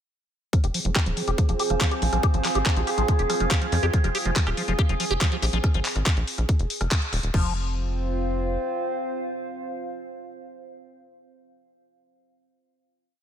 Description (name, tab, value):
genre	psychedelic trance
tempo	141 BPM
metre	4/4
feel	straight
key	F minor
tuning	A4 = 442 Hz
part	overtone-sweeping drone	sustained chords	0.9-5.6 s	Ab4	-30 LUFS	right 4 dB	chorus, built-in reverb, sidechain pumping
part	liquid acid bass	riff	0.5-7.5 s	F3 to G4	-30 LUFS	moving between left 6 dB and right 2 dB	phaser, auto-pan, sidechain pumping, digital delay
part	electronic kick drum	drums	0.5-7.4 s	none	-22 LUFS	equal	none
part	garage drum kit	drums	0.5-7.4 s	crash cymbal, handclaps, hi-hat, rim click	-28 LUFS	left 1 dB	none
part	warbly tape-like pad	texture	0.8-10.5 s	C4 to F5	-32 LUFS	right 1 dB	chorus, built-in reverb, sidechain pumping
part	tight sequencer bass	bass	0.6-8.6 s	Eb1 to F2	-26 LUFS	equal	none
room	light reverb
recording	none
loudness	-22 LUFS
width	side -9 dB against mid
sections	0.5-7.3 groove; 7.3-10.7 final chord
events	filter sweep on acid bass 0.5-5.6; band accent 6.9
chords	0.5 F5